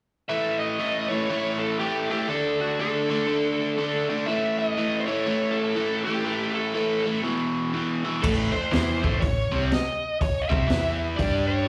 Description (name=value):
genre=blues rock power trio and southern rock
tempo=121 BPM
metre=4/4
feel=swing 63% on 8ths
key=A mixolydian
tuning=A4 = 440 Hz
part: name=biting lead guitar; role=melody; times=0.3-11.7 s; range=F#4 to E5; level=-29 LUFS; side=equal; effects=overdrive, slapback echo
part: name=overdriven electric guitar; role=riff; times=0.3-11.7 s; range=E2 to G4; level=-28 LUFS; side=equal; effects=slapback echo
part: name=vintage muted fingered electric bass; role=bass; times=8.2-11.6 s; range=A1 to G2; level=-30 LUFS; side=equal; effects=none
part: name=raw garage drum kit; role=drums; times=8.2-11.3 s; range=crash cymbal, hi-hat, kick drum, snare drum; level=-29 LUFS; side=equal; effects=none
room=moderate club reverb, RT60 0.8 s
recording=live gig heard through the venue's PA, club ambience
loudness=-25 LUFS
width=mono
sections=0.3-8.2 A section; 8.2-11.7 B section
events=none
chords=0.3 A; 2.3 D5; 4.3 A5; 7.2 E5; 8.2 A; 10.7 E5; 11.2 G5